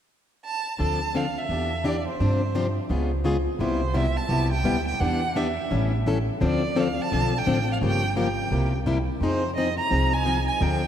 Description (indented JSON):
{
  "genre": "acoustic string swing (jazz manouche)",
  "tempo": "171 BPM",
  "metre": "4/4",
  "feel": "swing 60% on 8ths",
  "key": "C major",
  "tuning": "A4 = 442 Hz",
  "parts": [
    { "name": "warm violin", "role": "melody", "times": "0.4-10.9 s", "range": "C5 to Bb5", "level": "-28 LUFS", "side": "right 3 dB", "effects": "none" },
    { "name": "picked plugged-in steel-string acoustic guitar", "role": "accompaniment", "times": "0.8-10.8 s", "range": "C3 to A4", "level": "-25 LUFS", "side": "left 3 dB", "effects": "none" },
    { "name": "upright bass", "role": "bass", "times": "0.8-10.9 s", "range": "G1 to G2", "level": "-26 LUFS", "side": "right 1 dB", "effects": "none" }
  ],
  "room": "wet cathedral reverb, RT60 5.0 s",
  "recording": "in a vast, echoing space",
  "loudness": "-22 LUFS",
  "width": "side -9 dB against mid",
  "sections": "0.8-3.6 A section; 3.6-10.9 B section",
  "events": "none",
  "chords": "0.0 N.C.; 0.8 Dm7; 1.5 Em7; 2.2 G7sus4; 2.9 Db7; 3.6 Cmaj7; 5.0 Em7; 5.7 A7; 6.4 Dm7; 7.8 Gm7b5; 8.5 C7; 9.2 Fm7"
}